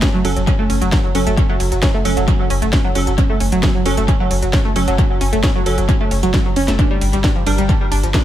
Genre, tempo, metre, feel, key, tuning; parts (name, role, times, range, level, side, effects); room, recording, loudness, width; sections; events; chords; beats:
driving peak-time techno; 133 BPM; 4/4; straight; F# phrygian; A4 = 438 Hz
analog pluck; riff; 0.0-8.2 s; E#3 to D4; -20 LUFS; right 1 dB; chorus, phaser, sidechain pumping, dub echo
electronic kick drum; drums; 0.0-8.2 s; -17 LUFS; equal
techno drum kit; drums; 0.0-8.2 s; hi-hat, ride cymbal, snare drum; -24 LUFS; equal; tape echo
wavetable chord stab; stabs; 0.2-7.6 s; F#3 to Bb4; -24 LUFS; right 4 dB; vintage 12-bit sampler grit, sidechain pumping, dub echo
warm sub bass; bass; 0.2-8.1 s; F#1 to G1; -20 LUFS; equal; tube saturation, sidechain pumping, low-pass filter
light reverb; echo-heavy mix; -14 LUFS; side -12 dB against mid
0.0-8.2 A section
0.0 F#m; 6.8 G5
0.02 0.47 0.92 | 1.38 1.83 2.28 2.73 | 3.18 3.63 4.08 4.53 | 4.98 5.43 5.89 6.34 | 6.79 7.24 7.69 8.14